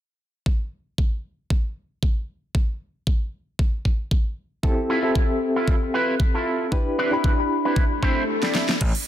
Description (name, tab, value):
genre	nu-disco, nu disco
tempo	115 BPM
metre	4/4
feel	swing 55% on 16ths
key	unclear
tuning	A4 = 441 Hz
part	electronic kick drum	drums	0.5-8.9 s	none	-21 LUFS	equal	studio reverb
part	bright reed electric piano	accompaniment	4.6-8.8 s	C4 to B5	-24 LUFS	left 1 dB	fast tremolo, sidechain pumping, ping-pong delay
part	electric guitar with an envelope filter	riff	4.9-8.8 s	C4 to D5	-25 LUFS	right 1 dB	analog chorus, ping-pong delay
part	swell	sound effects	7.9-8.8 s	none	-29 LUFS	left 4 dB	none
part	pop drum kit	drums	8.4-9.0 s	crash cymbal, hi-hat, snare drum	-24 LUFS	equal	studio reverb
part	gritty slap bass	bass	8.8-8.9 s	A1	-26 LUFS	equal	overdrive
room	light reverb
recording	dense, heavily limited modern master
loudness	-21 LUFS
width	side -12 dB against mid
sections	0.5-8.8 A section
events	swell 7.9-8.8; kick drops out 8.3-8.8; drum fill 8.4-8.8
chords	0.5 N.C.; 4.4 Fmaj7; 6.7 Cmaj9